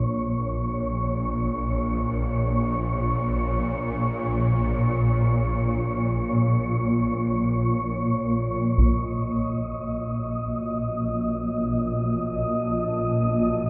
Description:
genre	dark ambient drone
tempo	free time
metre	none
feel	none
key	Bb minor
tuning	A4 = 440 Hz
part	swarming drone	drone	0.0-13.7 s	Bb1 to Bb2	-26 LUFS	equal	built-in reverb
part	wind-like tuned noise texture	texture	0.0-13.7 s	Db5 to Eb5	-32 LUFS	equal	built-in reverb
part	deep dark ambient pad	sustained chords	9.7-13.7 s	Gb4 to A5	-44 LUFS	equal	none
part	taiko ensemble	percussion	8.8-9.0 s	none	-28 LUFS	equal	low-pass filter on perc
room	wet cathedral reverb, RT60 6.6 s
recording	dark, warm production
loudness	-25 LUFS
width	mono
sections	0.0-8.8 A section; 8.8-13.7 B section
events	none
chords	0.0 Bbm; 8.8 Gbmadd9

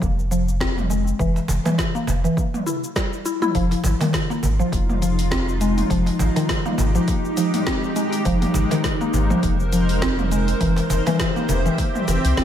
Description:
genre	organic downtempo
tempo	102 BPM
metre	4/4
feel	swing 57% on 16ths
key	F minor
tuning	A4 = 440 Hz
part	warm sub bass	bass	0.0-12.4 s	F1 to C2	-22 LUFS	equal	none
part	deep house drum kit	drums	0.0-12.4 s	hi-hat, shaker, snare drum, toms	-27 LUFS	equal	none
part	electronic kick drum	drums	0.0-12.4 s	none	-26 LUFS	equal	none
part	mallet-like synth pluck	arpeggios	0.3-12.4 s	Eb3 to E4	-22 LUFS	left 1 dB	lush chorus, analog delay
part	cajon	percussion	0.9-11.9 s	none	-30 LUFS	right 3 dB	none
part	granular cloud pad	sustained chords	4.3-12.4 s	Ab3 to E5	-25 LUFS	equal	built-in reverb, sidechain pumping
room	moderate plate reverb, RT60 1.5 s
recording	dreamy mix soaked in reverb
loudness	-18 LUFS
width	side -10 dB against mid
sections	0.0-12.4 A section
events	none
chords	0.0 Fm; 1.2 N.C.; 3.5 Fm9; 8.3 Ab/F; 10.6 C/F

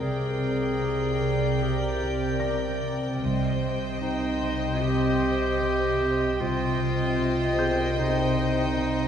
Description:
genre	cinematic, suspense film score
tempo	75 BPM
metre	4/4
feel	straight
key	C minor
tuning	A4 = 439 Hz
part	clear studio violin section	melody	0.0-9.1 s	G5	-36 LUFS	left 2 dB	none
part	bright clarinet	second line	0.0-9.1 s	Eb4 to Ab4	-28 LUFS	right 1 dB	none
part	dark studio violin section	second line	0.0-9.1 s	Bb4 to Eb5	-32 LUFS	left 2 dB	none
part	drifting glass-harmonics texture	sustained chords	0.0-9.1 s	Bb4 to G5	-35 LUFS	left 1 dB	chorus, built-in reverb
part	concert harp	riff	0.0-9.1 s	C3	-32 LUFS	left 2 dB	none
part	dark studio double bass section	bass	0.0-7.2 s	C2	-34 LUFS	right 1 dB	none
part	warm studio cello section	bass	0.0-9.1 s	C3	-30 LUFS	right 1 dB	none
part	analog drone	drone	0.0-9.1 s	C2	-32 LUFS	right 1 dB	chorus
part	felt-muted upright piano	texture	0.0-9.1 s	Ab4 to Bb6	-37 LUFS	equal	none
room	wet scoring stage reverb, RT60 1.8 s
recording	heard from further back in the room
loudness	-23 LUFS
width	side -8 dB against mid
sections	0.0-9.1 A section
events	none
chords	0.0 Gm/C; 3.2 Cm

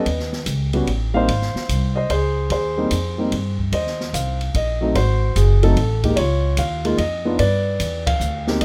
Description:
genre	jazz piano trio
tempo	147 BPM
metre	3/4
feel	swing 66% on 8ths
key	Ab major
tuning	A4 = 439 Hz
part	warm concert grand piano	melody	0.0-8.6 s	Gb3 to F5	-24 LUFS	equal	none
part	upright bass	bass	0.0-8.6 s	Gb1 to G2	-23 LUFS	equal	none
part	open jazz drum kit	drums	0.1-8.6 s	hi-hat, kick drum, ride cymbal, snare drum	-31 LUFS	equal	none
room	little or no reverb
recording	none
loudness	-20 LUFS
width	mono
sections	0.0-3.7 A section; 3.7-8.6 B section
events	band accent 8.0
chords	0.1 Eb7b13; 1.3 Abmaj7; 3.7 Bbsus24; 5.0 Ab7b9; 6.2 Db; 7.4 G7

